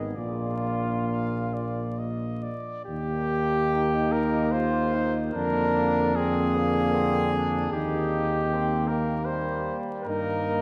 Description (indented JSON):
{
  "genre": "classical, hymn-like piece for brass band",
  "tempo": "64-79 BPM",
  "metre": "3/4",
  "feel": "rubato",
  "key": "Eb major",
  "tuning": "A4 = 440 Hz",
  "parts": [
    { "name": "warm cornet", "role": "melody", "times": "0.0-10.6 s", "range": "G4 to F5", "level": "-30 LUFS", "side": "equal", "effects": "none" },
    { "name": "warm euphonium", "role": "accompaniment", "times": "0.0-10.6 s", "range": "Bb2 to Eb3", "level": "-36 LUFS", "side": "equal", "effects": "none" },
    { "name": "warm trombone section", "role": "accompaniment", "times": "0.0-10.6 s", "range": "Bb3 to Cb4", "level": "-34 LUFS", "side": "equal", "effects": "none" },
    { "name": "mellow tuba", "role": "bass", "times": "0.0-10.6 s", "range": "Ab1 to G2", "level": "-32 LUFS", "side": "equal", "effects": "none" },
    { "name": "mellow flugelhorn", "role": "second line", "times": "0.1-10.6 s", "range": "G3 to F4", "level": "-35 LUFS", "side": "equal", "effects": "none" }
  ],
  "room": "wet church reverb, RT60 3.2 s",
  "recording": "vinyl crackle",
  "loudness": "-26 LUFS",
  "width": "mono",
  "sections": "0.0-2.9 A section; 2.9-10.6 B section",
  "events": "none",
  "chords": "0.2 Bb; 2.9 Eb; 5.3 Bb7/F; 7.7 Eb; 10.1 Eb/G"
}